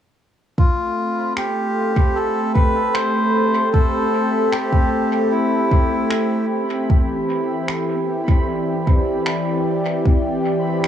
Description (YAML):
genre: ambient dub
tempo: 76 BPM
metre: 4/4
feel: straight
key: A minor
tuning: A4 = 440 Hz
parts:
  - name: melodica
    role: melody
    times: 0.6-6.5 s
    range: E4 to C5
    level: -22 LUFS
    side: equal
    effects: cassette tape, dub echo
  - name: warm analog pad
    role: sustained chords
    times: 0.6-10.9 s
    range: E3 to G5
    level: -21 LUFS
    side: equal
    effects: chorus
  - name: electronic kick drum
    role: drums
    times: 0.6-10.2 s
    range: none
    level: -16 LUFS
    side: equal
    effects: overdrive, cassette tape
  - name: bubbling stepped-filter texture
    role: texture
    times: 0.9-10.9 s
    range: C4 to B5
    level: -28 LUFS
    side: left 1 dB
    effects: chorus, built-in reverb
  - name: electronic finger snaps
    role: drums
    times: 1.4-10.9 s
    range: none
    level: -31 LUFS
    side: equal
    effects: cassette tape, dub echo
room: light reverb, digital ambience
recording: home recording on cassette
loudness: -16 LUFS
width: side -9 dB against mid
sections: 0.6-10.9 A section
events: none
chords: 0.6 Am7; 6.9 Em7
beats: | 0.58 1.37 2.16 2.95 | 3.74 4.53 5.32 6.11 | 6.90 7.69 8.48 9.27 | 10.06 10.85